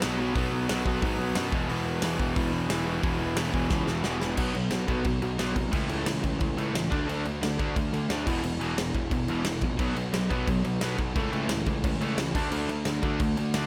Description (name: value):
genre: punk rock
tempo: 177 BPM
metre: 4/4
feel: straight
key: unclear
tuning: A4 = 441 Hz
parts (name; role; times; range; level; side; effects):
- crunchy overdriven guitar; riff; 0.0-13.7 s; E2 to D4; -36 LUFS; equal; none
- overdriven electric guitar; riff; 0.0-13.7 s; E2 to D4; -38 LUFS; equal; none
- tight distorted guitar; riff; 0.0-13.7 s; E2 to D4; -35 LUFS; equal; distortion
- fuzz picked electric bass; bass; 0.0-13.7 s; E1 to G#2; -34 LUFS; equal; overdrive
- big rock drum kit; drums; 0.0-13.6 s; crash cymbal, hi-hat, kick drum, snare drum; -33 LUFS; equal; none
room: little or no reverb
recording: none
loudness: -28 LUFS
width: mono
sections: 0.0-4.4 A section; 4.4-13.7 B section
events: drum fill 3.7-4.4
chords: 0.0 B5; 1.5 E5; 4.4 B5; 5.7 A/C#; 6.9 D5; 8.3 E5; 9.8 B5; 11.2 A/C#; 12.3 D5